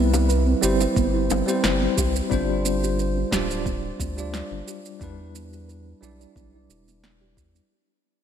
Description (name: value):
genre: sunset chillout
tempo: 89 BPM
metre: 4/4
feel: straight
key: unclear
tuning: A4 = 437 Hz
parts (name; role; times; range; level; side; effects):
- bell-like tine electric piano; accompaniment; 0.0-7.7 s; G3 to D5; -25 LUFS; moving between left 5 dB and right 6 dB; medium stereo tremolo, auto-pan, digital delay
- soft round pluck; arpeggios; 0.0-7.6 s; B3 to D5; -28 LUFS; right 3 dB; lush chorus, digital delay
- round analog bass; bass; 0.0-7.6 s; D1 to E2; -26 LUFS; equal; none
- electronic shaker and snare drum; drums; 0.1-7.7 s; none; -29 LUFS; right 2 dB; overdrive, gated reverb
- bongos; percussion; 0.1-2.1 s; none; -35 LUFS; left 8 dB; none
- electronic kick drum; drums; 1.0-7.5 s; none; -29 LUFS; equal; overdrive
room: moderate lush hall reverb, RT60 2.9 s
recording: bright 1980s-style digital production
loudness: -20 LUFS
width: side -8 dB against mid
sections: 0.0-7.7 A section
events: fade-out 0.0-7.7; filter sweep on synth arpeggio sound 0.0-7.7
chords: 0.0 Cmaj7; 2.3 G7sus4; 5.0 Em7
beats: 0.29 0.96 1.64 | 2.31 2.99 3.66 4.33 | 5.01 5.68 6.36 7.03